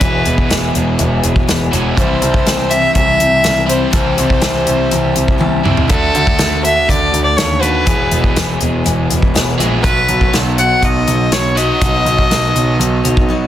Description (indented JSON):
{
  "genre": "folk rock and heartland rock",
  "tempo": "122 BPM",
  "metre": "4/4",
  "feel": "straight",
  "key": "unclear",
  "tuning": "A4 = 440 Hz",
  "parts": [
    { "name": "warm fiddle", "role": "melody", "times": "0.0-13.3 s", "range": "A4 to F#5", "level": "-16 LUFS", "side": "left 1 dB", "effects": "none" },
    { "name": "picked steel-string acoustic guitar", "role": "accompaniment", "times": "0.0-13.5 s", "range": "E2 to C#5", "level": "-21 LUFS", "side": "left 5 dB", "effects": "none" },
    { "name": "overdriven electric guitar", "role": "riff", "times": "0.0-13.5 s", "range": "E2 to G#4", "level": "-19 LUFS", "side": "right 2 dB", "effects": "none" },
    { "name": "warm grand piano", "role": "bass", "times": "0.0-13.2 s", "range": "E1 to D#2", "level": "-18 LUFS", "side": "right 1 dB", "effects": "none" },
    { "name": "natural country drum kit", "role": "drums", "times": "0.0-13.3 s", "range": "hi-hat, kick drum, snare drum, toms", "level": "-16 LUFS", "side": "equal", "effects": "none" }
  ],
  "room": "light reverb, studio reverb",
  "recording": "dense, heavily limited modern master",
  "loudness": "-11 LUFS",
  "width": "side -11 dB against mid",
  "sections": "0.0-13.5 A section",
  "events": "drum fill 5.4-5.9; break 13.3",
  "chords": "0.0 E; 2.0 C; 5.9 D; 7.9 E; 9.8 Badd9",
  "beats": "| 0.02 0.51 1.00 1.49 | 1.98 2.47 2.96 3.45 | 3.94 4.43 4.92 5.41 | 5.91 6.40 6.89 7.38 | 7.88 8.37 8.86 9.36 | 9.85 10.34 10.83 11.33 | 11.82 12.31 12.81 13.30"
}